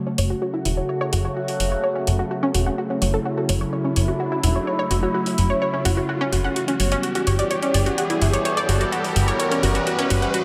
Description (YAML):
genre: melodic techno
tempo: 127 BPM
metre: 4/4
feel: straight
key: F# phrygian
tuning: A4 = 439 Hz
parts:
  - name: sweeping resonant pad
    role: sustained chords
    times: 0.0-10.4 s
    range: C#3 to A4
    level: -28 LUFS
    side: equal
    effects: chorus, phaser
  - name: riser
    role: sound effects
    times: 0.0-10.4 s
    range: none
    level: -33 LUFS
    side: equal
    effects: none
  - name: analog pluck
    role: arpeggios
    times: 0.1-10.4 s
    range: C#4 to F#5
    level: -26 LUFS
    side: equal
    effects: chorus, vintage 12-bit sampler grit, tape echo
  - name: plucky analog bass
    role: bass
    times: 0.2-10.3 s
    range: E1 to G1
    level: -24 LUFS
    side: equal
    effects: none
  - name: electronic hi-hat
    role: drums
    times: 0.2-10.4 s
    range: none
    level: -31 LUFS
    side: equal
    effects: overdrive
room: moderate spring reverb, RT60 2.5 s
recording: echo-heavy mix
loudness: -22 LUFS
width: mono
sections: 0.0-10.4 A section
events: build-up 0.0-10.4; riser 0.0-10.4; filter sweep on synth pluck 0.0-10.4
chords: 0.0 F#m; 6.6 Em/G